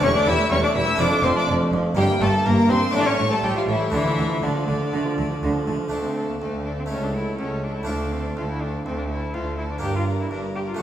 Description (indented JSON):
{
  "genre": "classical, baroque-style concerto movement with solo episodes",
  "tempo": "123 BPM",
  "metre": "4/4",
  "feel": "straight",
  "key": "D minor",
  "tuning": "A4 = 436 Hz",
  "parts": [
    { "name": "rich cello", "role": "melody", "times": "0.0-10.8 s", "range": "D3 to G4", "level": "-26 LUFS", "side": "left 1 dB", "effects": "none" },
    { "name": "warm chamber violin section", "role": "melody", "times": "0.0-10.8 s", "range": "D5 to E6", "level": "-29 LUFS", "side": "left 2 dB", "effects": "none" },
    { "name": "warm studio violin section", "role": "second line", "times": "0.0-10.8 s", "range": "D4 to E5", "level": "-28 LUFS", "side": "left 2 dB", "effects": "none" },
    { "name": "dark studio viola section", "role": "accompaniment", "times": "0.0-10.8 s", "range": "F3 to Bb3", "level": "-29 LUFS", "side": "right 1 dB", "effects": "none" },
    { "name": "harpsichord", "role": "accompaniment", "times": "0.0-10.8 s", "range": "C#2 to G4", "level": "-27 LUFS", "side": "right 1 dB", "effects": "none" },
    { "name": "rich chamber cello section", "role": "bass", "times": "0.0-10.8 s", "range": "C#2 to D3", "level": "-28 LUFS", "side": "right 2 dB", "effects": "none" },
    { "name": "rich chamber double bass section", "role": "bass", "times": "0.0-10.8 s", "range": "E1 to D2", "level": "-29 LUFS", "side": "right 2 dB", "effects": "none" }
  ],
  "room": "wet recital hall reverb, RT60 1.4 s",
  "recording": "recorded in a church or concert hall",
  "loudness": "-20 LUFS",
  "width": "side -10 dB against mid",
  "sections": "0.0-5.9 A section; 5.9-10.8 B section",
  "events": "none",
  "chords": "0.0 A7/E; 1.0 Dm/F; 2.0 Edim/G; 2.9 A5; 3.9 Dm; 6.9 A/C#; 7.9 Dm; 9.8 Gm"
}